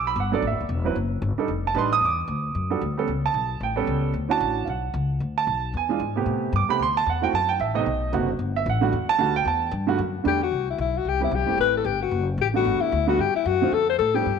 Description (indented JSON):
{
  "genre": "jazz, small-group swing and bop",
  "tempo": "226 BPM",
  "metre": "4/4",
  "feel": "swing 60% on 8ths",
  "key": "E minor",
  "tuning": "A4 = 440 Hz",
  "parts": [
    { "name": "dark baby grand piano", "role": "accompaniment", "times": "0.0-14.3 s", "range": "C3 to Eb6", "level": "-24 LUFS", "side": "right 7 dB", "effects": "none" },
    { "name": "upright bass", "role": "bass", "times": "0.0-14.4 s", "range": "D1 to A2", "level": "-27 LUFS", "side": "left 2 dB", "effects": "none" },
    { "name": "breathy alto saxophone", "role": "melody", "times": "10.3-14.4 s", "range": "E4 to C5", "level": "-22 LUFS", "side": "left 11 dB", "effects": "none" }
  ],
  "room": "moderate echo chamber reverb, RT60 1.6 s, small room ambience",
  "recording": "1960s-style stereo with parts hard left and right",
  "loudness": "-21 LUFS",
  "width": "side -6 dB against mid",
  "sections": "0.0-2.0 A section; 2.0-10.5 A section; 10.5-14.4 B section",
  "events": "none",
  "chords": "0.0 Bm7; 1.0 Dadd11/F#; 1.5 F13; 2.0 Em11; 3.1 A9; 4.1 Dmaj9; 5.2 Bm7; 5.7 E7b9; 6.3 Am9; 7.3 F#dim; 7.9 B7b9; 8.4 Em11; 10.5 Cmaj7; 11.6 Am7; 12.1 D; 12.7 Gmaj9; 13.7 Dm"
}